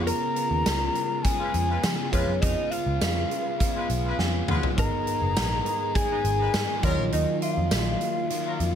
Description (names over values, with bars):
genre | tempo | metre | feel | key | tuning
1980s-style pop | 102 BPM | 4/4 | straight | unclear | A4 = 436 Hz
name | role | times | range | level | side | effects
mellow tine electric piano | accompaniment | 0.0-8.8 s | Ab2 to Ab5 | -33 LUFS | right 6 dB | none
sludgy distorted guitar | accompaniment | 0.0-8.8 s | Db3 to Ab4 | -36 LUFS | left 2 dB | overdrive, lush chorus
phased analog pad | sustained chords | 0.0-8.8 s | Db3 to Ab4 | -34 LUFS | left 1 dB | phaser, chorus
clear horn section | stabs | 0.0-8.6 s | Gb3 to Cb5 | -34 LUFS | left 2 dB | none
vintage muted picked electric bass | bass | 0.0-8.8 s | Gb1 to F3 | -27 LUFS | equal | none
hollow alto ocarina | melody | 0.1-8.8 s | Db5 to Bb5 | -29 LUFS | left 2 dB | tape echo
direct-recorded clean electric guitar | second line | 0.1-8.8 s | Db4 to Bb4 | -36 LUFS | left 5 dB | wide subtle chorus, tape echo
huge arena drum kit | drums | 0.1-8.7 s | hi-hat, kick drum, snare drum, tambourine, toms | -29 LUFS | equal | gated reverb
room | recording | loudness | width
light reverb | none | -23 LUFS | side -8 dB against mid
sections
0.0-8.8 A section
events
tine electric piano fill 3.9-4.8; drum fill 4.2-4.8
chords
0.0 Db7; 4.8 Abm; 6.8 Ebmadd9